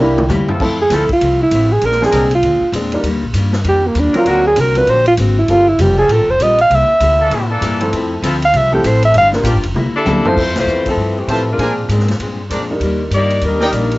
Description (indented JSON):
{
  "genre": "jazz, big band swing",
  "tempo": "197 BPM",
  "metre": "4/4",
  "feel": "swing 61% on 8ths",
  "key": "F major",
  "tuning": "A4 = 439 Hz",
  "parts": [
    { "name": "picked steel-string acoustic guitar", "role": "accompaniment", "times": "0.0-13.9 s", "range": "F2 to Bb4", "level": "-22 LUFS", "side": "left 2 dB", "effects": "cassette tape" },
    { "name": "warm baby grand piano", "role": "accompaniment", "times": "0.0-5.7, 7.8-14.0 s", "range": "Eb3 to G5", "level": "-19 LUFS", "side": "equal", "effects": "cassette tape" },
    { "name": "upright bass", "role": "bass", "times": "0.0-14.0 s", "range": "F1 to Bb2", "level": "-18 LUFS", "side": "equal", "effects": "transformer saturation" },
    { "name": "swinging big-band drum kit", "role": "drums", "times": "0.2-14.0 s", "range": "crash cymbal, hi-hat, kick drum, ride cymbal, snare drum, toms", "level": "-24 LUFS", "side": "equal", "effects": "cassette tape" },
    { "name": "bright trombone section", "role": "sustained chords", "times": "0.5-9.6 s", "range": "E3 to C5", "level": "-23 LUFS", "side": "left 1 dB", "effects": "cassette tape" },
    { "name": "dark alto saxophone", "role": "melody", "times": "0.8-9.3 s", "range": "Bb3 to F5", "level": "-12 LUFS", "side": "right 1 dB", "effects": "cassette tape" },
    { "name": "dark saxophone section", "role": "melody", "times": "9.9-14.0 s", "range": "E3 to D5", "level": "-17 LUFS", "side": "left 2 dB", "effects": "cassette tape" },
    { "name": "bright trumpet section", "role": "stabs", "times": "11.3-13.7 s", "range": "D4 to A5", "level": "-20 LUFS", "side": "equal", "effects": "cassette tape" }
  ],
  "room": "light reverb",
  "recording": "home recording on cassette, nothing above 7.8 kHz",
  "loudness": "-11 LUFS",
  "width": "side -20 dB against mid",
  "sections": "0.6-10.4 A section; 10.4-14.0 B section",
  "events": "drum fill 0.0-0.6, 9.8-10.4; alto saxophone solo 0.6-10.4; band accent 10.5",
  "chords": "0.0 C7; 0.6 Fmaj7; 1.8 Bb9; 3.0 Ebmaj7; 4.3 D7alt; 5.5 Gm11; 6.7 C13; 7.9 Fmaj7; 9.1 Gm7; 9.8 C13; 10.4 Fmaj7; 11.6 Bb9; 12.8 Ebmaj7"
}